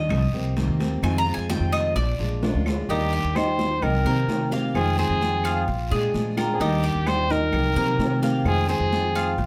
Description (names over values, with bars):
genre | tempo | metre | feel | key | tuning
latin, Cuban son and guajira | 129 BPM | 4/4 | straight | Eb major | A4 = 439 Hz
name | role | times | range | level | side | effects
fingerpicked steel-string acoustic guitar | accompaniment | 0.0-9.4 s | C3 to G4 | -31 LUFS | equal | none
Cuban tres | arpeggios | 0.0-9.5 s | Eb4 to Bb5 | -32 LUFS | equal | none
upright bass | bass | 0.0-9.5 s | Bb1 to C3 | -28 LUFS | equal | none
claves | percussion | 0.1-9.4 s | none | -41 LUFS | equal | none
congas | percussion | 0.1-9.5 s | none | -34 LUFS | equal | none
guiro | percussion | 0.1-9.5 s | none | -44 LUFS | equal | none
timbales and agogo bells | percussion | 0.1-9.4 s | none | -36 LUFS | equal | none
warm trumpet | melody | 2.9-9.3 s | G4 to C5 | -28 LUFS | equal | none
flamenco guitar | second line | 2.9-9.3 s | Bb3 to Eb4 | -34 LUFS | equal | slapback echo
room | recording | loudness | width
light reverb | none | -23 LUFS | mono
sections
0.0-2.9 A section; 2.9-9.5 B section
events
Cuban tres solo 0.0-2.9; drum fill 2.4-2.9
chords
0.1 Cm7; 1.0 Fm7; 2.0 Bb7; 2.9 Ebmaj7; 3.8 Cm7; 4.7 Fm7; 5.7 Bb7; 6.6 Ebmaj7; 7.5 Cm7; 8.5 Fm7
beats
0.11 0.57 | 1.04 1.50 1.96 2.43 | 2.89 3.36 3.82 4.29 | 4.75 5.21 5.68 6.14 | 6.60 7.07 7.53 7.99 | 8.46 8.92 9.38